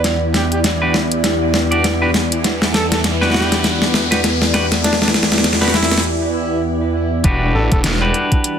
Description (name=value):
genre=glitch hop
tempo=100 BPM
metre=4/4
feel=swing 59% on 16ths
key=E minor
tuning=A4 = 440 Hz
part: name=warm analog pad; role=sustained chords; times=0.0-8.6 s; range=E2 to D4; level=-20 LUFS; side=equal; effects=lush chorus, sidechain pumping
part: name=pop drum kit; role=drums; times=0.0-8.6 s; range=hi-hat, snare drum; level=-17 LUFS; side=left 1 dB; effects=overdrive
part: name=riser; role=sound effects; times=0.2-6.0 s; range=none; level=-25 LUFS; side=equal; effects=none
part: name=granular cloud pad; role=texture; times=0.0-8.6 s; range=E4 to D5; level=-22 LUFS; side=right 1 dB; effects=built-in reverb, sidechain pumping
part: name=breathy trumpet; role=melody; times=0.3-7.8 s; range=D4 to A4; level=-25 LUFS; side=equal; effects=vintage 12-bit sampler grit, tape echo
part: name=clean electric guitar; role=stabs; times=0.8-8.6 s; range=D4 to D5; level=-21 LUFS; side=equal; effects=sidechain pumping, low-pass filter, tape echo
part: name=phased detuned saw bass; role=bass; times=7.2-8.1 s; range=E1 to A1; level=-18 LUFS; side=equal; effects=phaser
part: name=electronic kick drum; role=drums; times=7.2-8.4 s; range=none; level=-15 LUFS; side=equal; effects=overdrive
room=wet studio reverb, RT60 0.6 s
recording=dense, heavily limited modern master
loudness=-13 LUFS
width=side -8 dB against mid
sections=0.0-7.2 A section; 7.2-8.6 B section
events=build-up 0.0-7.2; drum fill 0.0-6.0; filter sweep on clean electric guitar 0.0-7.2; riser 0.2-6.0; break 6.0-7.2; drop 7.2-8.6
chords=0.0 Em7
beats=| 0.04 0.64 1.24 1.84 | 2.44 3.04 3.64 4.24 | 4.84 5.44 6.04 6.64 | 7.24 7.84 8.44